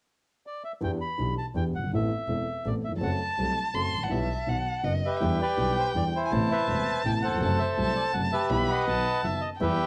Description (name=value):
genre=tango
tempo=164 BPM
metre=3/4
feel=rubato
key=E minor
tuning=A4 = 441 Hz
part: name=bandoneon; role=melody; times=0.5-9.9 s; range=E4 to B5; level=-32 LUFS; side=equal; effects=none
part: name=dark grand piano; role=accompaniment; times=0.8-9.8 s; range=E1 to A4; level=-33 LUFS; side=equal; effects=cassette tape
part: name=rich double bass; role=bass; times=0.8-9.8 s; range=E1 to E2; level=-34 LUFS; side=equal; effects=none
part: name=warm violin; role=second line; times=3.0-9.9 s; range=D#5 to C6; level=-33 LUFS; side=equal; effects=cassette tape
room=moderate small room reverb, RT60 0.6 s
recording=home recording on cassette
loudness=-28 LUFS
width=mono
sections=0.8-5.2 A section; 5.2-9.9 B section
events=none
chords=0.0 N.C.; 0.8 Em7; 1.9 Amadd9; 3.0 F#dim; 4.1 Em/B; 4.5 B; 5.2 Em7; 6.3 Amadd9; 7.4 F#dim; 8.5 Em/B; 8.9 B